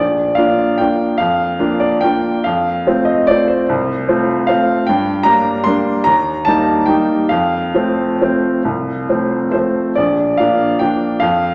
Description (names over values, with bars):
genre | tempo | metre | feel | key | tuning
classical, piano waltz | 131-161 BPM | 3/4 | rubato | Bb major | A4 = 439 Hz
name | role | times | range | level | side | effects
clear upright piano | solo | 0.0-11.5 s | Bb1 to C6 | -15 LUFS | equal | none
room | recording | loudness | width
wet recital hall reverb, RT60 1.6 s | none | -15 LUFS | mono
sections
0.0-11.5 A section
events
none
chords
0.0 Bb; 2.4 F; 4.9 Gm; 6.1 Eb; 7.3 F; 10.0 Bb